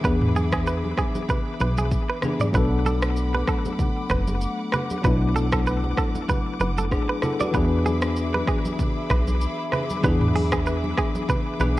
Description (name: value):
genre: afrobeats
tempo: 96 BPM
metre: 4/4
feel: swing 55% on 16ths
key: B dorian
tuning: A4 = 440 Hz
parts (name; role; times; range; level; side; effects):
- bell-like tine electric piano; accompaniment; 0.0-11.8 s; E3 to B4; -27 LUFS; left 2 dB; fast stereo tremolo
- warm studio string section; sustained chords; 0.0-11.8 s; A3 to D6; -33 LUFS; left 1 dB; none
- direct-recorded clean electric guitar; riff; 0.0-11.7 s; G#4 to D5; -28 LUFS; right 3 dB; warbly pitch drift, ping-pong delay
- plucky analog bass; bass; 0.0-11.8 s; F#1 to E2; -24 LUFS; equal; none
- afro-pop drum kit; drums; 0.0-11.8 s; hi-hat, kick drum, rim click, shaker, toms; -26 LUFS; equal; none
- congas; percussion; 0.4-11.5 s; none; -32 LUFS; right 2 dB; none
room: light reverb, digital ambience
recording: worn, warbling old tape, cassette tape, warbly pitch drift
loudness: -21 LUFS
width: side -16 dB against mid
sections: 0.0-2.5 A section; 2.5-11.8 B section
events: none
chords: 0.0 E7; 2.5 Bm7; 7.5 E7